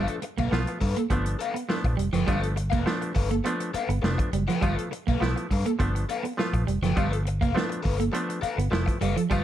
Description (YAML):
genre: funk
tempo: 102 BPM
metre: 4/4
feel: straight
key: G mixolydian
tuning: A4 = 440 Hz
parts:
  - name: crunchy overdriven guitar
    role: accompaniment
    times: 0.0-9.4 s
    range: A4 to G5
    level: -32 LUFS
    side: left 7 dB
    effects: phaser
  - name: electric guitar at the edge of break-up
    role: riff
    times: 0.0-9.4 s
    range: F3 to B3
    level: -30 LUFS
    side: right 6 dB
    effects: none
  - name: clav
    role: stabs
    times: 0.0-9.4 s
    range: F3 to F4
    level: -31 LUFS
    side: right 1 dB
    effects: slapback echo
  - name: vintage muted fingered electric bass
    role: bass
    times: 0.0-9.4 s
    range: F1 to G2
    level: -27 LUFS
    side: equal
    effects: none
  - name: warm soul drum kit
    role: drums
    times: 0.1-9.4 s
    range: hi-hat, kick drum, snare drum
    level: -29 LUFS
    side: equal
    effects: none
room: light reverb, studio ambience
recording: dark, warm production, vinyl crackle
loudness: -24 LUFS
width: side -12 dB against mid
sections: 0.0-9.4 A section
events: none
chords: 0.0 G9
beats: 0.52 1.11 1.69 | 2.28 2.86 3.45 4.03 | 4.62 5.21 5.79 6.38 | 6.96 7.55 8.14 8.72 | 9.31